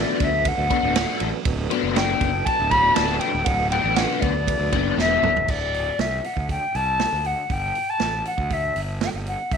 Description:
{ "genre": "psychedelic rock", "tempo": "119 BPM", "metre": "4/4", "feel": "straight", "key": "unclear", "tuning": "A4 = 436 Hz", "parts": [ { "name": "silver concert flute", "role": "melody", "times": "0.0-9.6 s", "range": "D5 to B5", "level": "-22 LUFS", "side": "left 2 dB", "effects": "slapback echo" }, { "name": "tonewheel organ", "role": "sustained chords", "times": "0.0-5.5 s", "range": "F#3 to B4", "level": "-31 LUFS", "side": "right 15 dB", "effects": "slow rotary speaker, chorus vibrato" }, { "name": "overdriven electric guitar", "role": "riff", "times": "0.0-5.3 s", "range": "B3 to B4", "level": "-25 LUFS", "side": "left 17 dB", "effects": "rotary speaker" }, { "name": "fuzz fingered electric bass", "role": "bass", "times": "0.0-9.6 s", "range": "D1 to D2", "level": "-27 LUFS", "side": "equal", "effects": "overdrive" }, { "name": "vintage drum kit", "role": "drums", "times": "0.2-9.6 s", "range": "crash cymbal, hi-hat, kick drum, ride cymbal, snare drum, toms", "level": "-27 LUFS", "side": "right 5 dB", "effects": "none" } ], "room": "light reverb, small room ambience", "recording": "1960s-style stereo with parts hard left and right", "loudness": "-19 LUFS", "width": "side -6 dB against mid", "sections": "0.0-5.5 A section; 5.5-9.6 B section", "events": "drum fill 5.0-5.5", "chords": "0.0 Bm7/D; 5.5 D5; 7.5 G5" }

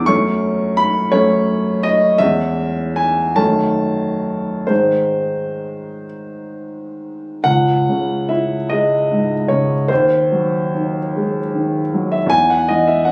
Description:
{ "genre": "classical, romantic nocturne for solo piano", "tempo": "42-58 BPM (dotted quarters)", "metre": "6/8", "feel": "rubato", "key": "C# minor", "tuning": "A4 = 440 Hz", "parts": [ { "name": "dark concert grand piano", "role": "solo", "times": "0.0-13.1 s", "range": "C#2 to E6", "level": "-17 LUFS", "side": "equal", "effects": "none" } ], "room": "light reverb", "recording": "recorded on a phone in the room, club reverb", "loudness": "-17 LUFS", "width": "mono", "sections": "0.0-7.5 A section; 7.5-13.1 B section", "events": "none", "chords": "0.1 F#m; 2.2 C#m/E; 3.4 D#dim/F#; 4.7 G#; 7.5 C#m; 9.9 G#7/D#; 12.3 C#m/E (rootless)" }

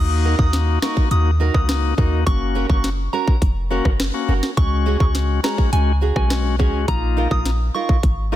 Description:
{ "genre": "dancehall", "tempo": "104 BPM", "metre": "4/4", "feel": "straight", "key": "Eb minor", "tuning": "A4 = 440 Hz", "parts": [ { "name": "soft synth bell", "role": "melody", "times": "0.0-7.9 s", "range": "Ab5 to Eb6", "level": "-28 LUFS", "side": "right 2 dB", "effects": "chorus, ping-pong delay" }, { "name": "bright tonewheel organ", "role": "accompaniment", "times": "0.0-8.4 s", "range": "Ab3 to Gb4", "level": "-25 LUFS", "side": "left 9 dB", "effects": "sidechain pumping" }, { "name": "clean 808-style bass", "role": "bass", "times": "0.0-8.4 s", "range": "F1 to Eb2", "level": "-19 LUFS", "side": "equal", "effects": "none" }, { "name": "nylon-string guitar", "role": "arpeggios", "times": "0.2-8.4 s", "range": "Db4 to Bb4", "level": "-27 LUFS", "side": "right 7 dB", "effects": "none" }, { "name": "island pop drum kit", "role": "drums", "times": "0.4-8.2 s", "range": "hi-hat, kick drum, rim click, snare drum", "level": "-20 LUFS", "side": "equal", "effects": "none" } ], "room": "little or no reverb", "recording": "dense, heavily limited modern master", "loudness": "-16 LUFS", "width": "side -13 dB against mid", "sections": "0.0-8.4 A section", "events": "none", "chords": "0.0 Ebm; 2.3 Gb; 4.6 Dbsus4; 6.9 Bbsus4" }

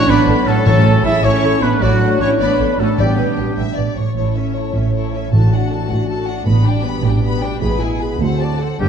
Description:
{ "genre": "cinematic, heroic adventure film score", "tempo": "104 BPM (dotted quarters)", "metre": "6/8", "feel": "straight", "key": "unclear", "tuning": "A4 = 440 Hz", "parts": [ { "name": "clear oboe", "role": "second line", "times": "0.0-3.6, 8.8-8.9 s", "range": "F#4 to E5", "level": "-27 LUFS", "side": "equal", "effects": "none" }, { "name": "rich symphonic violin section", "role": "second line", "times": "0.0-8.9 s", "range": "Bb3 to E6", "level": "-29 LUFS", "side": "left 4 dB", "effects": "none" }, { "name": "rich symphonic viola section", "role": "accompaniment", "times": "0.0-8.9 s", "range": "D3 to A4", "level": "-24 LUFS", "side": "equal", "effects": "none" }, { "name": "clear trombone section", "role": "sustained chords", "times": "0.0-8.9 s", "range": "A2 to D4", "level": "-25 LUFS", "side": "right 5 dB", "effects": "none" }, { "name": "warm French horn section", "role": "sustained chords", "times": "0.0-8.9 s", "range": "F#3 to C#5", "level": "-24 LUFS", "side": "left 4 dB", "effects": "none" }, { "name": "clear trumpet", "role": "stabs", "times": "0.0-3.6, 8.8-8.9 s", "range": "F#4 to E5", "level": "-20 LUFS", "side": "equal", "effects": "none" }, { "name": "rich symphonic cello section", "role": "bass", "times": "0.0-8.9 s", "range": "G2 to E4", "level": "-24 LUFS", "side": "right 3 dB", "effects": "none" }, { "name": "timpani", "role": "percussion", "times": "0.0-7.0 s", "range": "A2", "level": "-19 LUFS", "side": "left 1 dB", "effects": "none" }, { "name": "warm symphonic violin section", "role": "melody", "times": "0.1-8.9 s", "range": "E4 to B5", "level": "-25 LUFS", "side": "left 6 dB", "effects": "none" }, { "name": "rich symphonic double bass section", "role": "bass", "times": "0.1-8.9 s", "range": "G1 to D2", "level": "-18 LUFS", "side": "right 3 dB", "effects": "none" } ], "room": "wet scoring stage reverb, RT60 1.7 s", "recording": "dark, warm production", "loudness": "-13 LUFS", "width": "side -7 dB against mid", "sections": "0.0-4.2 A section; 4.2-8.8 B section", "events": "none", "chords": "0.0 D/A; 0.7 A; 1.8 D/A; 3.0 G/A; 4.2 A; 5.3 D/A; 6.5 G/A; 7.6 E/A; 8.2 D7" }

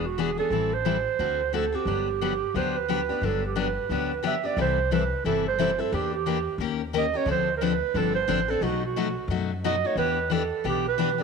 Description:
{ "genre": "acoustic string swing (jazz manouche)", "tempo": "178 BPM", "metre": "4/4", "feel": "swing 60% on 8ths", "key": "G major, C major from 4.6 s", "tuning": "A4 = 439 Hz", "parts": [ { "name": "breathy clarinet", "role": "melody", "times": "0.0-11.2 s", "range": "F#4 to E5", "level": "-26 LUFS", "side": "right 10 dB", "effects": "slapback echo" }, { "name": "picked steel-string acoustic guitar", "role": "accompaniment", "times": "0.0-11.2 s", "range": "B2 to Bb4", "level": "-28 LUFS", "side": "left 11 dB", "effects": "none" }, { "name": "upright bass", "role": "bass", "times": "0.0-11.2 s", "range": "E1 to F#2", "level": "-32 LUFS", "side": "left 1 dB", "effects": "none" } ], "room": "moderate plate reverb, RT60 2.9 s", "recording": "1960s-style stereo with parts hard left and right", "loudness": "-23 LUFS", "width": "side -5 dB against mid", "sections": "0.0-4.6 A section; 4.6-11.2 B section", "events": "none", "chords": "0.0 E7; 0.5 Am7; 1.2 D7; 1.9 Gmaj7; 4.6 C6; 5.9 Em7b5; 6.6 Eb7; 7.3 Dm7; 8.6 B7; 10.0 Em7" }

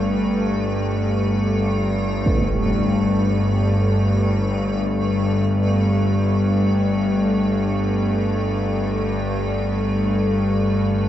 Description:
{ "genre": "dark ambient drone", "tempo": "free time", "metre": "none", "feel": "none", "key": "unclear", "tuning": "A4 = 441 Hz", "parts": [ { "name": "bowed-like drone", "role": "drone", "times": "0.0-11.1 s", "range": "G1 to G2", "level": "-19 LUFS", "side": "left 1 dB", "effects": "built-in reverb" }, { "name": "icy glass pad", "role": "texture", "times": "0.0-11.1 s", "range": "A3 to A4", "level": "-25 LUFS", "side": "right 1 dB", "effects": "chorus, built-in reverb" }, { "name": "impact", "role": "percussion", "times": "2.3-2.5 s", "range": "none", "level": "-24 LUFS", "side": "right 1 dB", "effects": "low-pass filter on sfx" } ], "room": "moderate huge ambient reverb, RT60 8.2 s", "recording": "worn, warbling old tape, cassette tape, warbly pitch drift, nothing above 8.0 kHz", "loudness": "-18 LUFS", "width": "side -11 dB against mid", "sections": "0.0-11.1 A section", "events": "none", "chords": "0.0 Gsus2" }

